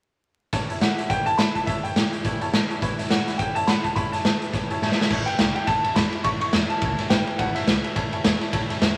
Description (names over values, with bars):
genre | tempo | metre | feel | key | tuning
rockabilly | 210 BPM | 4/4 | swing 58% on 8ths | A mixolydian | A4 = 440 Hz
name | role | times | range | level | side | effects
honky-tonk upright piano | accompaniment | 0.5-8.9 s | C#5 to B5 | -36 LUFS | equal | none
picked swing-style acoustic guitar | accompaniment | 0.5-9.0 s | A2 to E4 | -36 LUFS | equal | none
raw garage drum kit | drums | 0.5-8.9 s | crash cymbal, hi-hat, kick drum, ride cymbal, snare drum | -24 LUFS | equal | none
bright upright piano | melody | 0.8-8.7 s | E5 to C#6 | -29 LUFS | equal | none
upright bass | bass | 5.1-9.0 s | G1 to G2 | -37 LUFS | equal | none
room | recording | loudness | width
light reverb | vinyl crackle | -23 LUFS | mono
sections
0.5-5.1 A section; 5.1-9.0 B section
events
drum fill 4.8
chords
0.5 A7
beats
| 0.53 0.82 1.10 1.39 | 1.68 1.96 2.25 2.54 | 2.82 3.11 3.40 3.68 | 3.97 4.25 4.54 4.83 | 5.11 5.40 5.68 5.97 | 6.25 6.54 6.82 7.11 | 7.39 7.68 7.96 8.25 | 8.53 8.82